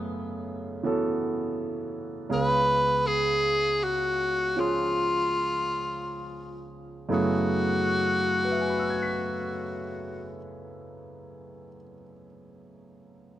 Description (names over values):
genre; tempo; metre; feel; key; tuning
jazz ballad; 44-58 BPM; 4/4; swing 68% on 8ths; F# minor; A4 = 441 Hz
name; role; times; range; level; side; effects
warm concert grand piano; accompaniment; 0.0-13.4 s; C#2 to B6; -30 LUFS; right 2 dB; none
bright tenor saxophone; melody; 2.3-10.4 s; E#4 to B4; -26 LUFS; left 1 dB; none
room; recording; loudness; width
light reverb; none; -24 LUFS; side -12 dB against mid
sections
0.0-2.3 A section; 2.3-7.1 B section; 7.1-12.5 C section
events
slowing down 0.0-7.1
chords
0.0 F#m11; 2.3 C#7; 7.1 F#m11